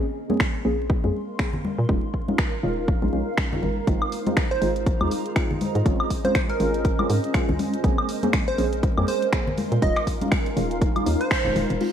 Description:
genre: deep house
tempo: 121 BPM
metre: 4/4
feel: swing 58% on 16ths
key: unclear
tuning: A4 = 441 Hz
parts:
  - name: deep mellow chord stab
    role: stabs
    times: 0.0-11.9 s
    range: Ab3 to Ab4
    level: -28 LUFS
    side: equal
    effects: chorus, sidechain pumping, digital delay
  - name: granular cloud pad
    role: texture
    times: 0.0-11.9 s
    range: Db4 to C6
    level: -32 LUFS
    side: right 1 dB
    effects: built-in reverb, sidechain pumping
  - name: congas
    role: percussion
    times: 0.3-11.7 s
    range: none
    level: -31 LUFS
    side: left 3 dB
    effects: sidechain pumping on perc
  - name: electronic kick drum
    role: drums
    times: 0.4-11.4 s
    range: none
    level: -24 LUFS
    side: equal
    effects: overdrive
  - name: house drum kit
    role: drums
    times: 0.4-11.9 s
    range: crash cymbal, finger snaps, hi-hat, woodblock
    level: -29 LUFS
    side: equal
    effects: overdrive
  - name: hollow knocking FM bass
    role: bass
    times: 0.6-11.8 s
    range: Eb1 to Bb2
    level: -26 LUFS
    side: equal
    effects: sidechain pumping
  - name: hollow soft pad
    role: sustained chords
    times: 3.9-11.9 s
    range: Ab3 to C6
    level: -33 LUFS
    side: right 2 dB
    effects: ensemble chorus, vintage 12-bit sampler grit, sidechain pumping
  - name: plucky unison lead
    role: melody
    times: 4.5-11.7 s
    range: Bb4 to Eb5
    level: -27 LUFS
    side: right 2 dB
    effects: ping-pong delay
room: moderate plate reverb, RT60 2.0 s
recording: bright 1980s-style digital production, vinyl crackle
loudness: -21 LUFS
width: side -9 dB against mid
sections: 0.0-11.8 A section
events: band accent 11.3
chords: 0.0 Bbm9; 1.9 Eb9sus4; 3.9 Ab6; 5.9 Dbmaj7/Ab; 7.8 Bbm9; 9.8 Eb9sus4

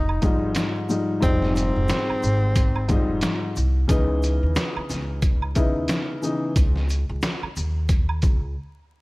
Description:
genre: hip hop, boom-bap hip-hop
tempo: 90 BPM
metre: 4/4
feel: swing 58% on 16ths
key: unclear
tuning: A4 = 440 Hz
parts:
  - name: breathy tenor saxophone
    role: melody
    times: 0.0-3.4 s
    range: C4 to Eb4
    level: -27 LUFS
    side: equal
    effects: high-pass filter, low-pass filter, slapback echo
  - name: dark grand piano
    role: accompaniment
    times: 0.0-6.5 s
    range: Ab2 to Fb4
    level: -25 LUFS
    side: left 2 dB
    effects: high-pass filter, low-pass filter
  - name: upright bass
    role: bass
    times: 0.0-8.5 s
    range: F1 to Eb2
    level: -24 LUFS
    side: equal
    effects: none
  - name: woodblock and egg shaker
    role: percussion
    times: 0.1-8.4 s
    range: none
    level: -36 LUFS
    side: right 4 dB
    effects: none
  - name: trip hop sampler-style drum kit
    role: drums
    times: 0.2-8.4 s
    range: hi-hat, kick drum, shaker, snare drum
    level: -23 LUFS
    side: equal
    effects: overdrive
room: small room ambience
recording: vinyl crackle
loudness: -20 LUFS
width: side -22 dB against mid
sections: 0.0-9.0 A section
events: break 8.6-9.0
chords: 0.0 Fm9; 3.9 Dbm9

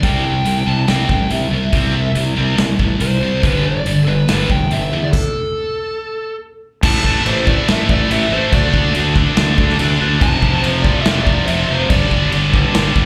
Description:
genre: hard rock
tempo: 142 BPM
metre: 4/4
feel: straight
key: A minor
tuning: A4 = 439 Hz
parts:
  - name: dark smooth lead guitar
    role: melody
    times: 0.0-12.3 s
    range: A4 to A5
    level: -24 LUFS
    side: equal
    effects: overdrive, slapback echo
  - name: heavy high-gain guitar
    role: riff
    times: 0.0-13.1 s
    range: F2 to D4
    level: -22 LUFS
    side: equal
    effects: distortion, slapback echo
  - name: heavy high-gain guitar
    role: riff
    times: 0.0-13.1 s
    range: F2 to D4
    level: -25 LUFS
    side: equal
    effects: distortion
  - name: fuzz fingered electric bass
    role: bass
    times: 0.0-13.1 s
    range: F1 to E2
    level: -21 LUFS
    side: equal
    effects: overdrive
  - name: big rock drum kit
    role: drums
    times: 0.0-13.1 s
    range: crash cymbal, hi-hat, kick drum, snare drum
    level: -20 LUFS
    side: equal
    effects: none
  - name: distorted electric guitar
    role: riff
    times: 6.8-13.1 s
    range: F2 to D4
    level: -27 LUFS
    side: equal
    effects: overdrive, slapback echo
room: light reverb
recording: live gig heard through the venue's PA, club reverb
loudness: -16 LUFS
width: mono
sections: 0.0-6.8 A section; 6.8-13.1 B section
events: stop 5.1-6.8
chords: 0.0 C; 3.4 G5; 5.1 N.C.; 6.8 A5; 8.5 D5; 10.2 F; 11.9 G5

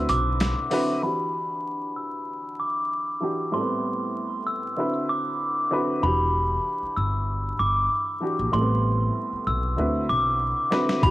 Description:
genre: hip hop, boom-bap hip-hop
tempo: 96 BPM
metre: 4/4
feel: swing 55% on 16ths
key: E minor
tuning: A4 = 440 Hz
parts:
  - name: glockenspiel with soft plastic mallets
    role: melody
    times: 0.0-11.1 s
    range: B5 to E6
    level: -26 LUFS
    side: equal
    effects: high-pass filter, low-pass filter, cassette tape
  - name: dark upright piano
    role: accompaniment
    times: 0.0-11.1 s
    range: A2 to B4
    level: -28 LUFS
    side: equal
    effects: high-pass filter, low-pass filter, cassette tape
  - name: upright bass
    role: bass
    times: 0.0-0.5, 6.0-11.1 s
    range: E1 to D2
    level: -26 LUFS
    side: equal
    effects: none
  - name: boom bap sampler-style drum kit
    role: drums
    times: 0.1-0.9, 10.7-11.1 s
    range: hi-hat, kick drum, snare drum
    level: -26 LUFS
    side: equal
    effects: cassette tape
room: moderate spring reverb, RT60 2.9 s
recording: home recording on cassette, vinyl crackle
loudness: -23 LUFS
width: side -16 dB against mid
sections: 0.0-1.0 A section; 1.0-11.0 B section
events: break 0.0-1.0; filter sweep 1.0-11.0; drum fill 10.4-11.0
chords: 0.0 D13; 1.0 Em9; 3.5 Am9; 4.8 D13; 6.0 Em9; 8.5 Am9; 9.8 D13

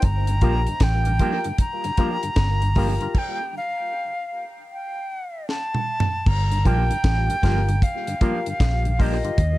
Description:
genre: roots reggae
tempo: 77 BPM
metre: 4/4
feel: swing 64% on 16ths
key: G minor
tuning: A4 = 440 Hz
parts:
  - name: silver concert flute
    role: melody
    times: 0.0-9.6 s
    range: Eb5 to Bb5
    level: -26 LUFS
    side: equal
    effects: dub echo
  - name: percussive organ stab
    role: stabs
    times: 0.0-9.4 s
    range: F4 to Bb4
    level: -30 LUFS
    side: left 6 dB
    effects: chorus
  - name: vintage muted fingered electric bass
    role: bass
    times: 0.0-9.6 s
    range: G1 to Eb2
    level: -21 LUFS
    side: equal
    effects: none
  - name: deep reggae drum kit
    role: drums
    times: 0.0-9.6 s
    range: crash cymbal, hi-hat, kick drum, snare drum, toms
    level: -22 LUFS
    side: equal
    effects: none
  - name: mellow tonewheel organ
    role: accompaniment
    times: 0.3-9.3 s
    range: G2 to F4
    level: -32 LUFS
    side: left 1 dB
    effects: slow rotary speaker, tape echo
  - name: electric guitar with an envelope filter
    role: accompaniment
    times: 0.4-9.2 s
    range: F3 to G4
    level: -31 LUFS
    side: right 4 dB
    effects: dub echo
room: little or no reverb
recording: dark, warm production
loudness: -20 LUFS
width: side -17 dB against mid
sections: 0.0-6.3 A section; 6.3-9.6 A section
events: stop 3.1-6.3; drum fill 5.5-6.3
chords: 0.0 Gm7; 3.1 N.C.; 6.3 Gm7

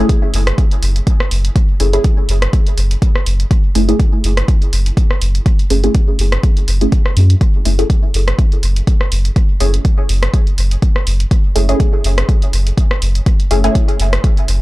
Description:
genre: dub techno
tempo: 123 BPM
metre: 4/4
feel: swing 55% on 16ths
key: F# minor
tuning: A4 = 440 Hz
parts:
  - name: filtered dub chord stab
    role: stabs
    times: 0.0-13.9 s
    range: A3 to G#4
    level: -20 LUFS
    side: equal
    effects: chorus, phaser, sidechain pumping, dub echo
  - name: warm sub bass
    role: bass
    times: 0.0-14.6 s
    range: F#1 to F#2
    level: -14 LUFS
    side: equal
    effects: tube saturation, sidechain pumping
  - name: electronic kick drum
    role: drums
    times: 0.1-14.3 s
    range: none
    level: -13 LUFS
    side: equal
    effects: overdrive
  - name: punchy analog drum machine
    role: drums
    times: 0.1-14.6 s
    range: hi-hat, rim click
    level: -22 LUFS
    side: equal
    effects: none
room: little or no reverb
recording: dry, gritty hardware recording, transformer saturation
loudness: -11 LUFS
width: side -18 dB against mid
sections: 0.0-14.6 A section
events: none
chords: 0.0 F#m9

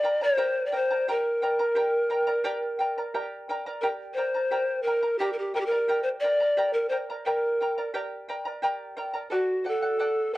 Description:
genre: andean folk, Andean ensemble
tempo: 87 BPM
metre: 4/4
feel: straight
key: G minor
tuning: A4 = 440 Hz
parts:
  - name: breathy reedy large pan pipes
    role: melody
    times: 0.0-10.4 s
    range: F#4 to D5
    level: -24 LUFS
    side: equal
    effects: plate reverb
  - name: charango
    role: accompaniment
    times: 0.0-10.4 s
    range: G4 to Bb5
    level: -31 LUFS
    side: equal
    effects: none
room: wet booth ambience, RT60 0.2 s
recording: worn, warbling old tape, cassette tape, warbly pitch drift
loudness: -24 LUFS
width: side -17 dB against mid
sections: 0.0-3.8 A section; 3.8-10.4 B section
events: none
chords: 0.0 Gm; 9.3 D

